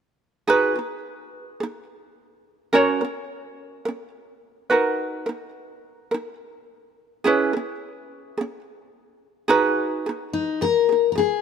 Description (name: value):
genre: pop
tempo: 107 BPM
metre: 4/4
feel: straight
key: G# minor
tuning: A4 = 440 Hz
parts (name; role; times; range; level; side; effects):
- ukulele; accompaniment; 0.5-11.4 s; C#4 to C#5; -21 LUFS; right 3 dB; none
- picked steel-string acoustic guitar; melody; 10.3-11.4 s; D#4 to A#4; -18 LUFS; left 9 dB; none
room: moderate plate reverb, RT60 2.8 s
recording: none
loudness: -20 LUFS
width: side -7 dB against mid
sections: 0.5-9.5 A section; 9.5-11.4 B section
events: none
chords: 0.5 G#m7; 2.7 F#; 4.7 Bmaj7; 7.2 C#m7; 9.5 G#m7